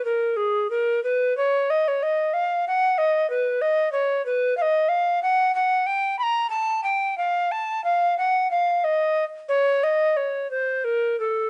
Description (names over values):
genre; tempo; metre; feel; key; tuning
classical, baroque-style fantasia for unaccompanied recorder; 92 BPM; 4/4; rubato; Eb minor; A4 = 440 Hz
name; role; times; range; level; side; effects
mellow tenor recorder; solo; 0.0-11.5 s; Ab4 to Cb6; -23 LUFS; equal; none
room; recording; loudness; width
light reverb; nothing above 10.3 kHz; -23 LUFS; mono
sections
0.0-11.5 A section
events
none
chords
none